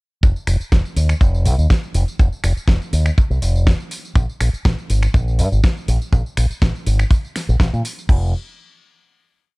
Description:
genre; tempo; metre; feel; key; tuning
nu-disco, nu disco; 122 BPM; 4/4; straight; F minor; A4 = 435 Hz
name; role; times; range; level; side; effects
fingered electric bass with an envelope filter; bass; 0.2-8.3 s; F1 to Bb2; -17 LUFS; equal; sidechain pumping
kick drum; drums; 0.2-8.2 s; none; -14 LUFS; equal; small room ambience
pop drum kit; drums; 0.2-8.2 s; crash cymbal, finger snaps, hi-hat, snare drum, tambourine; -26 LUFS; equal; small room ambience
room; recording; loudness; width
little or no reverb; none; -15 LUFS; side -29 dB against mid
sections
0.2-8.1 groove; 8.1-9.6 final note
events
none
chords
none

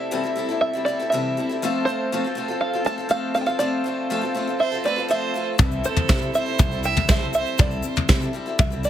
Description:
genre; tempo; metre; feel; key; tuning
indie folk with a building arrangement; 120 BPM; 4/4; straight; C major; A4 = 441 Hz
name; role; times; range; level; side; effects
open-back banjo; melody; 0.0-8.9 s; C5 to A5; -25 LUFS; right 2 dB; none
picked acoustic archtop guitar; accompaniment; 0.0-8.9 s; C3 to A4; -26 LUFS; left 3 dB; none
pedal harmonium; sustained chords; 0.0-7.6 s; C3 to A4; -31 LUFS; right 4 dB; stereo widening
clear fiddle; second line; 4.6-7.6 s; A4 to E5; -28 LUFS; right 8 dB; digital delay
picked electric bass; bass; 5.6-8.9 s; C2 to C3; -26 LUFS; equal; none
soft brush drum kit; drums; 5.6-8.7 s; kick drum, snare drum, toms; -19 LUFS; equal; none
egg shaker; percussion; 5.6-8.9 s; none; -38 LUFS; left 17 dB; none
room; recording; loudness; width
light reverb, small room ambience; heavily compressed radio sound; -20 LUFS; side -11 dB against mid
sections
0.0-8.9 A section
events
none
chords
0.0 C6; 1.6 F; 5.6 C6

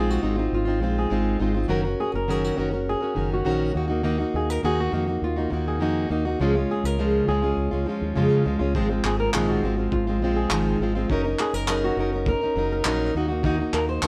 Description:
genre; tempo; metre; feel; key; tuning
acoustic pop; 102 BPM; 4/4; straight; Ab mixolydian; A4 = 440 Hz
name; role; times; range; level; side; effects
flamenco guitar; melody; 0.0-14.1 s; F4 to C5; -31 LUFS; equal; none
fingerpicked plugged-in steel-string acoustic guitar; accompaniment; 0.0-14.1 s; Ab2 to Bb4; -26 LUFS; equal; none
fingered electric bass with an envelope filter; bass; 0.0-14.1 s; Gb1 to F2; -30 LUFS; equal; none
cloth-damped thuddy drum kit; drums; 8.7-14.1 s; handclaps, kick drum; -31 LUFS; equal; none
room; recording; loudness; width
moderate stone room reverb, RT60 1.2 s; band playing live in one room; -24 LUFS; mono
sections
0.0-14.1 A section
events
none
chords
0.0 Ab6; 1.7 Gb6; 3.8 Ebm; 6.4 Db; 8.7 Ab6; 11.1 Gb6; 13.2 Ebm

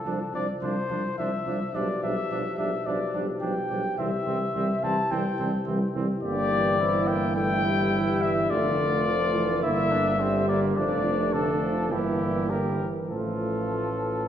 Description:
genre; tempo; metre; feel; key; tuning
classical, brass quintet; 106 BPM; 4/4; straight; C major, D minor from 6.2 s; A4 = 440 Hz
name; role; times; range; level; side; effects
mellow trumpet; melody; 0.0-14.3 s; G4 to A5; -28 LUFS; left 4 dB; none
warm trumpet; second line; 0.1-14.3 s; Bb3 to G4; -32 LUFS; right 4 dB; none
mellow trombone; accompaniment; 0.1-14.0 s; C3 to F3; -33 LUFS; right 3 dB; none
warm French horn; accompaniment; 0.1-14.2 s; F3 to C4; -31 LUFS; left 2 dB; none
warm tuba; bass; 0.1-14.3 s; F1 to C2; -29 LUFS; right 1 dB; none
room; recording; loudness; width
wet recital hall reverb, RT60 1.9 s; heard from further back in the room; -23 LUFS; side -10 dB against mid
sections
0.0-14.3 A section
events
none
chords
0.0 Dm7/C; 1.7 G7/B; 4.0 C; 6.2 Em7b5/G; 7.4 A5/G; 8.5 Dm/F; 9.6 Gm; 10.8 Dm/F; 11.9 Edim/G; 13.1 F/A

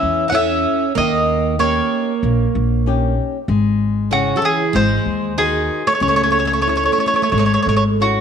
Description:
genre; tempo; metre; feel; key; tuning
fado-style ballad; 95 BPM; 4/4; rubato; C# minor; A4 = 440 Hz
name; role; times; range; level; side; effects
mandolin; melody; 0.0-8.2 s; F#4 to F#5; -18 LUFS; equal; none
picked plugged-in twelve-string acoustic guitar; second line; 0.0-7.8 s; C#3 to D#4; -22 LUFS; right 10 dB; none
nylon-string guitar; accompaniment; 0.0-8.2 s; C#3 to C#5; -23 LUFS; left 11 dB; none
upright bass; bass; 0.0-8.2 s; G#1 to E2; -20 LUFS; left 1 dB; none
room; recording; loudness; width
moderate echo chamber reverb, RT60 2.1 s; 1960s-style stereo with parts hard left and right; -15 LUFS; side -7 dB against mid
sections
0.0-8.2 A section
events
none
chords
0.0 A; 1.0 D#7; 3.5 C#m/G#; 4.7 G#7; 6.0 C#madd9

